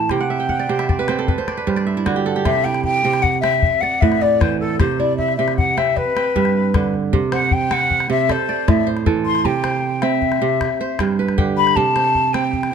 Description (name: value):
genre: west african traditional, West African string and xylophone music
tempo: 103 BPM (dotted quarters)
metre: 12/8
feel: straight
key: C lydian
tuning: A4 = 440 Hz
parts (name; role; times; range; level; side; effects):
- breathy mellow jazz flute; melody; 0.0-12.7 s; A4 to C6; -18 LUFS; left 4 dB; none
- kora; arpeggios; 0.0-12.7 s; G2 to G5; -19 LUFS; right 6 dB; none
- calabash; percussion; 0.0-12.7 s; none; -22 LUFS; left 4 dB; none
room: light reverb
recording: close, detailed microphones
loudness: -16 LUFS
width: side -7 dB against mid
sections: 0.0-7.1 A section; 7.1-12.7 B section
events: kora fill 0.2-2.5; flute solo 7.1-12.7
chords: 0.1 N.C.; 1.3 G5; 2.5 C; 3.6 A5; 4.8 C; 6.0 G; 7.1 N.C.; 8.3 Am; 9.4 C; 10.6 G; 11.8 C5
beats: | 0.10 0.69 1.28 1.86 | 2.45 3.04 3.62 4.21 | 4.79 5.38 5.96 6.55 | 7.13 7.71 8.29 8.87 | 9.45 10.03 10.61 11.19 | 11.76 12.34